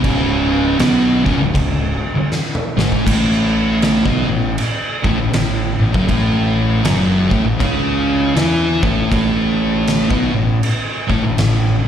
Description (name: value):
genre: stoner and doom metal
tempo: 79 BPM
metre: 4/4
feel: swing 62% on 8ths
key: unclear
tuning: A4 = 443 Hz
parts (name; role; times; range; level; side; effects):
- thick fuzz guitar; riff; 0.0-11.9 s; C#2 to E4; -19 LUFS; left 8 dB; distortion, slapback echo
- thick fuzz guitar; riff; 0.0-11.9 s; C#2 to E4; -19 LUFS; right 7 dB; distortion, slapback echo
- fuzz fingered electric bass; bass; 0.0-11.8 s; C#1 to E2; -20 LUFS; equal; overdrive, tube saturation
- oversized low-tuned drum kit; drums; 0.0-11.6 s; crash cymbal, kick drum, snare drum, toms; -20 LUFS; equal; none
room: small room ambience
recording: live gig heard through the venue's PA, recital hall reverb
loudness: -14 LUFS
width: side -9 dB against mid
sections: 0.0-11.9 A section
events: drum fill 2.3-3.1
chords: 0.0 C#5; 3.1 A5